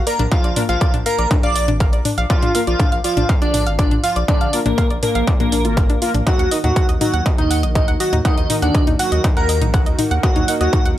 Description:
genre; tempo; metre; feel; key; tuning
melodic techno; 121 BPM; 4/4; straight; Eb harmonic minor; A4 = 441 Hz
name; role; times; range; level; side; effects
soft round pluck; arpeggios; 0.0-10.9 s; D4 to Gb5; -24 LUFS; left 1 dB; chorus, sidechain pumping, digital delay
round analog bass; bass; 0.0-10.9 s; Ab1 to Eb2; -21 LUFS; equal; sidechain pumping
fat analog lead; melody; 0.1-10.8 s; Bb3 to D5; -22 LUFS; equal; phaser, sidechain pumping, tape echo
airy dreamy lead; second line; 0.1-10.8 s; Bb4 to D6; -27 LUFS; right 1 dB; chorus, sidechain pumping, digital delay
techno drum kit; drums; 0.1-11.0 s; hi-hat, toms; -25 LUFS; equal; overdrive, sidechain pumping on hats, studio reverb, sidechain pumping on toms
electronic kick drum; drums; 0.3-10.8 s; none; -17 LUFS; equal; distortion, overdrive, studio reverb
analog synth brass; stabs; 0.6-10.5 s; Bb3 to Eb5; -25 LUFS; left 1 dB; chorus, sidechain pumping, digital delay
lush unison pad; sustained chords; 6.3-11.0 s; Eb3 to Gb4; -28 LUFS; right 1 dB; chorus, sidechain pumping
room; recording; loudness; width
little or no reverb; none; -14 LUFS; side -13 dB against mid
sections
0.0-11.0 A section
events
none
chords
0.0 Bb; 6.3 Ebm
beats
| 0.32 0.81 1.31 1.80 | 2.30 2.79 3.29 3.79 | 4.28 4.78 5.28 5.77 | 6.27 6.76 7.26 7.75 | 8.25 8.75 9.24 9.74 | 10.23 10.73

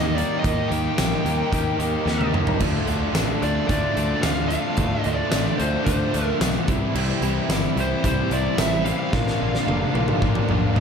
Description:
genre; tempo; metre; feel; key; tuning
classic rock; 110 BPM; 4/4; straight; unclear; A4 = 440 Hz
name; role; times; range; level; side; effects
fuzz lead guitar; melody; 0.0-10.8 s; C5 to G5; -28 LUFS; right 1 dB; distortion, tape echo
overdriven tonewheel organ; sustained chords; 0.0-10.8 s; A3 to D5; -38 LUFS; right 2 dB; none
biting overdriven guitar; riff; 0.0-10.8 s; Bb2 to E4; -28 LUFS; right 15 dB; tremolo
overdriven semi-hollow guitar; riff; 0.0-10.8 s; Bb2 to G4; -26 LUFS; left 11 dB; none
fuzz picked electric bass; bass; 0.0-10.8 s; F1 to Eb2; -26 LUFS; equal; overdrive
huge arena drum kit; drums; 0.2-10.8 s; crash cymbal, hi-hat, kick drum, snare drum, tambourine, toms; -24 LUFS; equal; none
room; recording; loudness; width
light reverb, small room reverb; none; -20 LUFS; side -6 dB against mid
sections
0.0-10.8 A section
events
drum fill 2.1-2.6, 9.1-10.8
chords
0.0 Eb; 2.6 Dm; 6.7 C; 9.1 Bb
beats
| 0.44 0.98 1.52 2.06 | 2.60 3.15 3.69 4.23 | 4.78 5.32 5.87 6.41 | 6.95 7.50 8.04 8.59 | 9.13 9.68 10.22 10.77

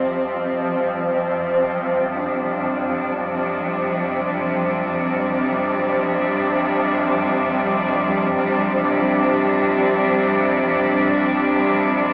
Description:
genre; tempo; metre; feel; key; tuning
dark ambient drone; free time; none; none; unclear; A4 = 441 Hz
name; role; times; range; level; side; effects
clear chamber cello section; sustained chords; 0.0-12.1 s; C3 to D4; -19 LUFS; equal; shimmer reverb
swarming drone; drone; 0.0-12.1 s; F2 to F3; -22 LUFS; equal; built-in reverb
room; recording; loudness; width
wet cathedral reverb, RT60 5.5 s; worn, warbling old tape, cassette tape, warbly pitch drift, AM radio sound; -17 LUFS; side -34 dB against mid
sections
0.0-12.1 A section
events
none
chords
0.0 C5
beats
free time

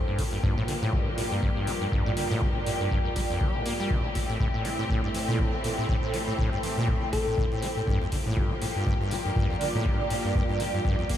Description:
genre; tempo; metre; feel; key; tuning
acid house; 121 BPM; 4/4; swing 56% on 16ths; unclear; A4 = 441 Hz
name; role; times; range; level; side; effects
bright symphonic string section; sustained chords; 0.0-11.2 s; G2 to G4; -33 LUFS; left 2 dB; sidechain pumping
airy breathy pad; texture; 0.0-11.2 s; E4 to G5; -33 LUFS; right 2 dB; chorus, phaser, sidechain pumping
acid bass, saw; riff; 0.1-11.2 s; F2 to C4; -30 LUFS; equal; diffuse ambient delay
electronic hi-hat; drums; 0.2-11.2 s; none; -39 LUFS; equal; none
electronic kick drum; drums; 0.2-11.2 s; none; -28 LUFS; equal; none
thumb-piano-like synth pluck; melody; 7.1-7.6 s; A4; -36 LUFS; left 4 dB; chorus, cassette tape, tape echo
room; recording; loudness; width
light reverb; small room ambience; -24 LUFS; side -10 dB against mid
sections
0.0-11.2 A section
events
none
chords
0.0 Gm7; 3.9 Am7; 7.9 Gm7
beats
0.44 0.93 1.43 | 1.92 2.42 2.92 3.41 | 3.91 4.40 4.90 5.39 | 5.89 6.39 6.88 7.38 | 7.87 8.37 8.87 9.36 | 9.86 10.35 10.85

